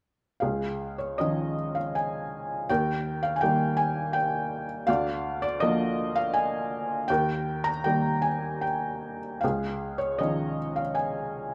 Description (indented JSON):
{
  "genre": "classical, lyrical solo piano",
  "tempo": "76-83 BPM",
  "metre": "3/4",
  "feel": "rubato",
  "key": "Db lydian",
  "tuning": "A4 = 437 Hz",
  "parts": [
    { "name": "felt-muted upright piano", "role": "solo", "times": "0.4-11.5 s", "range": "Db2 to Bb5", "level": "-28 LUFS", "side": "equal", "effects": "none" }
  ],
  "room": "moderate recital hall reverb, RT60 1.7 s",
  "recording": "none",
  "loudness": "-28 LUFS",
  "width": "mono",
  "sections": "0.4-11.5 A section",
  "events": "none",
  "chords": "0.4 Dbadd9; 2.7 Eb; 4.9 Bb/D; 7.1 Eb; 9.4 Dbadd9"
}